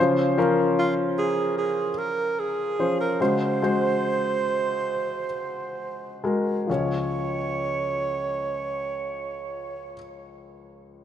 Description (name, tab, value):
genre	pop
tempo	66-76 BPM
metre	4/4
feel	straight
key	Db major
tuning	A4 = 440 Hz
part	clear grand piano	accompaniment	0.0-11.0 s	Db2 to Db5	-25 LUFS	left 2 dB	none
part	clear alto saxophone	melody	0.8-9.9 s	F4 to Db5	-27 LUFS	right 4 dB	none
room	moderate plate reverb, RT60 2.5 s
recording	rough home demo mix, nothing above 10.9 kHz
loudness	-23 LUFS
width	side -10 dB against mid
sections	0.0-6.7 A section; 6.7-10.3 B section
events	slowing down 0.0-6.7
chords	0.0 Dbmaj7; 3.2 Ab7/Db; 6.7 Db